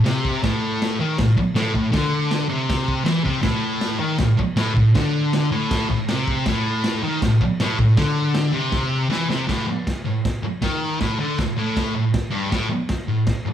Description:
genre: garage rock duo or trio.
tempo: 159 BPM.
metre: 4/4.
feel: straight.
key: unclear.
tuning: A4 = 441 Hz.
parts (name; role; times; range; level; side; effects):
thick fuzz guitar; riff; 0.0-13.5 s; G2 to E3; -19 LUFS; equal; distortion.
crunchy breakbeat drum kit; drums; 0.1-13.4 s; crash cymbal, kick drum, snare drum; -25 LUFS; equal; none.
room: wet large studio reverb, RT60 1.4 s.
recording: band playing live in one room.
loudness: -18 LUFS.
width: side -10 dB against mid.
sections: 0.0-9.5 A section; 9.5-13.5 B section.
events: drum fill 8.7-9.5.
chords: none.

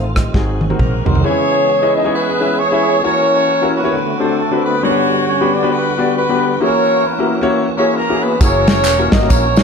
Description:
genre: uptempo gospel.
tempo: 134 BPM.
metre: 4/4.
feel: swing 59% on 8ths.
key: unclear.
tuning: A4 = 441 Hz.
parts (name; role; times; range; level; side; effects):
warm concert grand piano; accompaniment; 0.0-9.6 s; G2 to F5; -18 LUFS; left 3 dB; none.
tonewheel organ; sustained chords; 0.0-9.6 s; D3 to G#4; -22 LUFS; right 3 dB; slow rotary speaker, overdrive, chorus vibrato.
fingered electric bass; bass; 0.0-1.2, 8.4-9.6 s; E1 to C2; -19 LUFS; equal; none.
warm soul drum kit; drums; 0.2-1.2, 8.4-9.6 s; hi-hat, kick drum, rim click, snare drum, toms; -15 LUFS; right 1 dB; none.
mellow horn section; melody; 0.8-9.6 s; A3 to D#5; -15 LUFS; equal; none.
tambourine and handclaps; percussion; 8.4-9.6 s; none; -24 LUFS; right 1 dB; none.
room: light reverb.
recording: none.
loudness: -12 LUFS.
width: side -6 dB against mid.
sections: 0.0-1.2 A section; 1.2-9.6 B section.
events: drum fill 0.3-1.2.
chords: 0.3 Ab7; 1.2 C#m7; 3.0 F#7; 3.9 D7; 4.8 Gmaj7; 6.6 F#7.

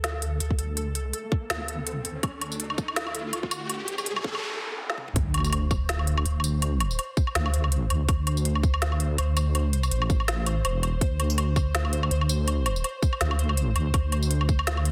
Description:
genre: half-time drum and bass.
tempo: 164 BPM.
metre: 4/4.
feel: swing 56% on 16ths, half-time.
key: unclear.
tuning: A4 = 441 Hz.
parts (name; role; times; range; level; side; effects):
deep soft wobble bass; bass; 0.0-14.9 s; E1 to D2; -28 LUFS; equal; chorus, tube saturation.
organic electronic drum kit; drums; 0.0-14.9 s; hi-hat, snare drum, tambourine, toms, woodblock; -32 LUFS; equal; none.
riser, noise sweep and sub drop; sound effects; 0.7-6.6 s; none; -37 LUFS; equal; none.
pulsing gated texture; texture; 0.0-14.9 s; A4 to C5; -40 LUFS; equal; chorus, built-in reverb.
electronic kick drum; drums; 0.5-14.6 s; none; -27 LUFS; equal; none.
room: light reverb.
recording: dense, heavily limited modern master, high-pass filter.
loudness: -26 LUFS.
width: mono.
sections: 0.0-5.2 A section; 5.2-14.9 B section.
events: build-up 0.0-5.2; filter sweep 0.0-5.2; riser 0.7-4.4; noise sweep 3.7-5.2; stop 4.4-5.2; drum fill 4.9; drop 5.2-14.9; impact 5.2-6.6.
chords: 0.0 D5.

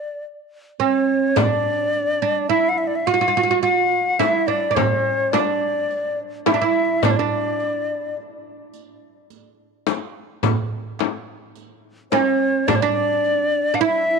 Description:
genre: Arabic maqam ensemble.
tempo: 106 BPM (eighths).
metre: 10/8.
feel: straight.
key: unclear.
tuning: A4 = 441 Hz.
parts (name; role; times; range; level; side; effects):
hollow concert flute; melody; 0.0-14.2 s; C5+49c to F#5-50c; -21 LUFS; left 3 dB; none.
oud; second line; 0.0-14.2 s; C4+50c to F#4-50c; -21 LUFS; right 11 dB; none.
darbuka; percussion; 1.4-14.0 s; none; -27 LUFS; right 4 dB; none.
frame drum; percussion; 1.4-12.9 s; none; -24 LUFS; left 15 dB; none.
riq; percussion; 1.4-13.4 s; none; -33 LUFS; right 13 dB; none.
room: moderate plate reverb, RT60 3.5 s.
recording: 1960s-style stereo with parts hard left and right.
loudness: -18 LUFS.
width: side -5 dB against mid.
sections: 0.0-1.4 A section; 1.4-14.2 B section.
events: stop 0.0-1.4.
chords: none.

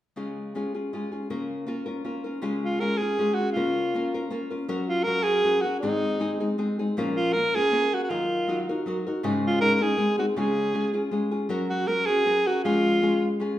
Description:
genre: mexican folk, mariachi.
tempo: 159 BPM.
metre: 3/4.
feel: straight.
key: Db major.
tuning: A4 = 440 Hz.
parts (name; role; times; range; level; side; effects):
nylon-string guitar; accompaniment; 0.2-13.6 s; Ab2 to Bb4; -27 LUFS; left 1 dB; none.
bright alto saxophone; melody; 2.6-13.4 s; Eb4 to Bb4; -24 LUFS; right 1 dB; none.
room: wet recital hall reverb, RT60 1.3 s.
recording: minimal, uncompressed stereo recording.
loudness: -23 LUFS.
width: side -13 dB against mid.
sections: 0.2-2.4 A section; 2.4-13.6 B section.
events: none.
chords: 0.2 Db; 1.3 Bbm/Db; 2.4 Db; 3.6 Bbm/Db; 4.7 Gb; 5.8 Ab; 7.0 Bbm; 8.1 Ebm; 9.2 Absus4; 10.0 Ab; 10.4 Db; 11.5 Gb; 12.6 Db/F.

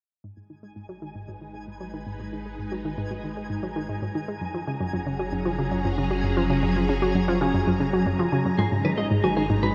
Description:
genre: ambient, sequencer-driven space music.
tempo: 115 BPM.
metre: 4/4.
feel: straight.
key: G# minor.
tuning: A4 = 440 Hz.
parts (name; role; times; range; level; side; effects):
phased string machine; sustained chords; 1.5-9.7 s; F#3 to A#5; -32 LUFS; equal; ensemble chorus, phaser, shimmer reverb.
analog pluck; riff; 0.2-9.7 s; F#2 to G#3; -28 LUFS; equal; chorus, analog delay, shimmer reverb.
round analog bass; bass; 0.2-9.7 s; F#1 to G#1; -37 LUFS; equal; none.
twinkling granular texture; texture; 0.8-9.7 s; C#5 to G#5; -40 LUFS; equal; built-in reverb, shimmer reverb.
twelve-string electric guitar; arpeggios; 8.6-9.7 s; G#4 to G#5; -32 LUFS; equal; analog delay, shimmer reverb.
room: wet cathedral reverb, RT60 6.2 s.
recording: in a vast, echoing space.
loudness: -25 LUFS.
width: mono.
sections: 0.2-8.6 A section; 8.6-9.7 B section.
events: fade-in on synth arpeggio sound 0.2-8.6; fade-in on string machine 0.2-8.6; fade-in on analog synth bass 0.2-8.6; fade-in on synth texture 0.2-8.6.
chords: 0.2 G#m; 4.4 F#add9; 8.6 G#m.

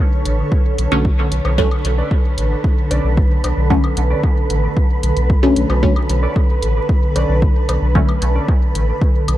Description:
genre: dub techno.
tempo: 113 BPM.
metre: 4/4.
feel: straight.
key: B minor.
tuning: A4 = 440 Hz.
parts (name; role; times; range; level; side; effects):
granular cloud pad; sustained chords; 0.0-9.4 s; D3 to C#5; -23 LUFS; right 1 dB; built-in reverb, sidechain pumping.
filtered dub chord stab; stabs; 0.0-9.4 s; D3 to C#4; -21 LUFS; left 1 dB; phaser, sidechain pumping, dub echo.
wind-like tuned noise texture; texture; 0.0-9.4 s; B4; -29 LUFS; right 3 dB; built-in reverb, sidechain pumping.
round analog bass; bass; 0.3-9.4 s; A1 to B1; -17 LUFS; equal; sidechain pumping.
electronic hi-hat; drums; 0.3-9.4 s; none; -28 LUFS; equal; none.
electronic kick drum; drums; 0.5-9.1 s; none; -16 LUFS; equal; none.
cowbell and woodblock; percussion; 1.4-9.4 s; none; -31 LUFS; left 2 dB; overdrive, sidechain pumping on perc, dub echo.
warbly lo-fi synth keys; riff; 2.0-8.5 s; C#4 to D5; -30 LUFS; right 1 dB; chorus, sidechain pumping, dub echo.
room: little or no reverb.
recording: dark, warm production, vinyl crackle.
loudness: -14 LUFS.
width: side -14 dB against mid.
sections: 0.0-9.4 A section.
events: none.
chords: 0.0 Bm9.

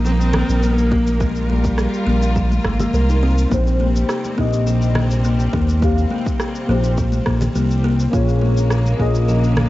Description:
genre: organic downtempo.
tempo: 104 BPM.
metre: 4/4.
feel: straight.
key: unclear.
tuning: A4 = 441 Hz.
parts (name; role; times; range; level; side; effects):
rich studio string section; sustained chords; 0.0-9.7 s; C3 to Bb4; -28 LUFS; right 1 dB; sidechain pumping.
buzzing kalimba; arpeggios; 0.0-9.7 s; F3 to Bb4; -23 LUFS; left 3 dB; tape echo.
smooth synth bass; bass; 0.0-9.7 s; Ab1 to Eb2; -17 LUFS; equal; transformer saturation.
bronze singing bowl; texture; 0.0-9.7 s; none; barely audible; none; none.
dark cello; melody; 0.1-3.5 s; G3 to C4; -25 LUFS; right 1 dB; cassette tape, tape echo.
electronic shaker and rim click; drums; 0.1-9.7 s; none; -29 LUFS; right 1 dB; studio reverb, cassette tape.
congas and bongos; percussion; 0.3-9.7 s; none; -28 LUFS; left 1 dB; none.
electronic kick drum; drums; 0.9-9.1 s; none; -23 LUFS; equal; studio reverb, cassette tape.
deep mellow chord stab; accompaniment; 3.5-9.7 s; Bb3 to F5; -24 LUFS; left 2 dB; chorus, phaser, sidechain pumping, tape echo.
room: light reverb, small room ambience.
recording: home recording on cassette, nothing above 7.7 kHz.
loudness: -15 LUFS.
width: side -16 dB against mid.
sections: 0.0-9.7 A section.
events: none.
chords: 0.0 Abmaj9/Bb; 3.5 Cm7/Bb; 8.1 Bbm7.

